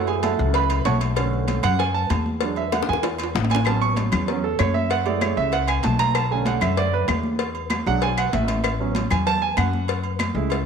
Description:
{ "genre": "latin, salsa", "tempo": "193 BPM", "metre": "4/4", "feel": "straight", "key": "A major", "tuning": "A4 = 438 Hz", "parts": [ { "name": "warm grand piano", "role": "accompaniment", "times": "0.0-10.6 s", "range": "D3 to C#6", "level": "-23 LUFS", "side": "right 8 dB", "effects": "none" }, { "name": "upright bass", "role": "bass", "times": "0.0-10.7 s", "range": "A1 to F#2", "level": "-24 LUFS", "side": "left 3 dB", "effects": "none" }, { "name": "agogo bells and timbales", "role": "percussion", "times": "0.1-10.7 s", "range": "none", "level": "-31 LUFS", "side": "right 10 dB", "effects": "none" }, { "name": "congas", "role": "percussion", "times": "0.1-10.7 s", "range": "none", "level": "-29 LUFS", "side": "left 1 dB", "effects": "none" }, { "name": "cowbell and bongos", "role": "percussion", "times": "0.2-10.7 s", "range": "none", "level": "-30 LUFS", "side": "left 13 dB", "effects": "none" }, { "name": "claves", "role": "percussion", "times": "3.7-10.4 s", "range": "none", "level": "-30 LUFS", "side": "left 14 dB", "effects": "none" } ], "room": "moderate echo chamber reverb, RT60 1.6 s, small room ambience", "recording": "1960s-style stereo with parts hard left and right", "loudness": "-19 LUFS", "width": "side -6 dB against mid", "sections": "0.0-10.7 A section", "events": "grand piano solo 0.0-10.7; drum fill 2.7-3.7", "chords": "0.0 F#m7; 1.2 Bm7; 2.4 E7; 3.7 A6; 4.9 F#m7; 6.2 Bm7; 7.4 E7; 8.6 A6; 9.9 F#m7" }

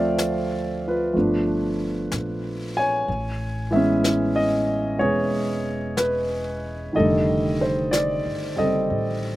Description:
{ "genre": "jazz ballad", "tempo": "62 BPM", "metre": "4/4", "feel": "swing 68% on 8ths", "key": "unclear", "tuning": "A4 = 440 Hz", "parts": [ { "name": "warm concert grand piano", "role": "accompaniment", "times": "0.0-9.4 s", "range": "D3 to Ab5", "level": "-21 LUFS", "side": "equal", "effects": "slapback echo" }, { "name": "upright bass", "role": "bass", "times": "0.0-9.4 s", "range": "E1 to D2", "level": "-31 LUFS", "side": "left 1 dB", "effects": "none" }, { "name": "jazz brush drum kit", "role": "drums", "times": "0.2-9.4 s", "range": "brushed snare drum, hi-hat, snare drum", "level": "-32 LUFS", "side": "left 2 dB", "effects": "none" } ], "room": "little or no reverb", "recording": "recorded outdoors, with no room sound", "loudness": "-21 LUFS", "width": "side -16 dB against mid", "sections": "0.0-9.4 A section", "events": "none", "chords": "0.0 Dm7; 1.1 G9; 3.1 Amaj9; 6.9 F13" }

